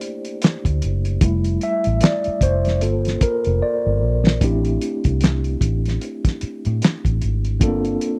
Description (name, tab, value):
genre	R&B, neo-soul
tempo	75 BPM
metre	4/4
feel	swing 58% on 16ths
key	unclear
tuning	A4 = 443 Hz
part	mellow tine electric piano	accompaniment	0.0-8.2 s	G3 to E5	-25 LUFS	equal	none
part	cloth-damped thuddy drum kit	drums	0.0-8.2 s	handclaps, hi-hat, kick drum, snare drum	-20 LUFS	equal	none
part	vintage muted fingered electric bass	bass	0.7-8.0 s	F1 to A2	-23 LUFS	equal	none
room	little or no reverb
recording	dry, close 1970s-style studio recording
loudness	-20 LUFS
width	mono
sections	0.0-4.4 A section; 4.4-8.2 B section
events	tine electric piano solo 0.0-4.4; drum fill 3.6-4.4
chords	0.0 C13; 1.2 Fmaj9; 2.8 Gm9; 4.4 Am7; 7.6 Gm9